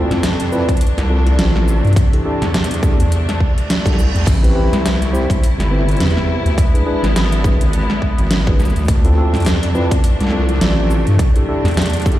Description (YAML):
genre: glitch hop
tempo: 104 BPM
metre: 4/4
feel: swing 57% on 16ths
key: unclear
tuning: A4 = 440 Hz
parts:
  - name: rich symphonic string section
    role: sustained chords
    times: 0.0-12.2 s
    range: C3 to E4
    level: -23 LUFS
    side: equal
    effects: sidechain pumping
  - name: mellow tine electric piano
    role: stabs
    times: 0.0-12.2 s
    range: C4 to C5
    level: -22 LUFS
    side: equal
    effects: sidechain pumping, tape echo
  - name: wobble bass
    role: bass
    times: 0.0-12.2 s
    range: G1 to G2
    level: -16 LUFS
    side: equal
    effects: chorus, overdrive
  - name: dubstep drum kit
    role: drums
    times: 0.1-12.2 s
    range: crash cymbal, hi-hat, shaker, snare drum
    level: -21 LUFS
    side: equal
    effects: overdrive
  - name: electronic kick drum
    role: drums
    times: 0.7-12.2 s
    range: none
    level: -14 LUFS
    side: equal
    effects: overdrive
  - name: reverse cymbal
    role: sound effects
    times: 3.4-4.3 s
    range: none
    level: -29 LUFS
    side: right 4 dB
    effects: none
room: light reverb, digital ambience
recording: played on a big sound system in a bare room, large studio reverb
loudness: -13 LUFS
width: side -14 dB against mid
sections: 0.0-12.2 A section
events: reverse cymbal 3.4-4.3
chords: 0.0 Dm7; 2.0 C69; 4.3 Am7; 6.6 E7; 8.9 Dm7; 11.2 C69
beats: 0.23 0.81 1.39 | 1.96 2.54 3.12 3.69 | 4.27 4.85 5.42 6.00 | 6.58 7.16 7.73 8.31 | 8.89 9.46 10.04 10.62 | 11.19 11.77